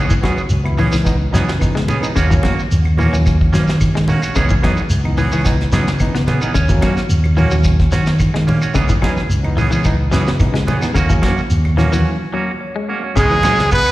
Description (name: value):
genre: afrobeat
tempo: 109 BPM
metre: 4/4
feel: straight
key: C# dorian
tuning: A4 = 440 Hz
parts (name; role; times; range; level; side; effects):
- barky tine electric piano; accompaniment; 0.0-13.1 s; E3 to C#5; -25 LUFS; right 1 dB; overdrive, slapback echo
- semi-hollow electric guitar; arpeggios; 0.0-13.6 s; C#3 to B3; -23 LUFS; left 4 dB; slapback echo
- clean electric guitar; stabs; 0.0-13.6 s; E3 to G#4; -22 LUFS; right 4 dB; harmonic tremolo, slapback echo
- fingered electric bass; bass; 0.0-13.8 s; C#2 to D#3; -16 LUFS; equal; none
- vintage brush drum kit; drums; 0.1-13.9 s; hi-hat, kick drum, snare drum; -20 LUFS; equal; none
- shekere; percussion; 0.1-13.9 s; none; -22 LUFS; equal; none
- claves; percussion; 0.2-13.9 s; none; -34 LUFS; left 2 dB; slapback echo
- congas; percussion; 0.2-13.9 s; none; -23 LUFS; equal; slapback echo
- brilliant trumpet; melody; 13.2-13.9 s; G#4 to B4; -13 LUFS; right 1 dB; slapback echo
- bright alto saxophone; second line; 13.2-13.9 s; G#3 to B3; -22 LUFS; right 2 dB; slapback echo
room: little or no reverb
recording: live gig heard through the venue's PA, recital hall reverb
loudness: -13 LUFS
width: side -16 dB against mid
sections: 0.0-13.2 A section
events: break 12.1-13.2; tine electric piano fill 12.3-13.2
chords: 0.0 C#m7; 2.2 D#m7; 4.4 C#m7; 6.6 D#m7; 8.8 C#m7; 11.0 D#m7; 13.2 C#m7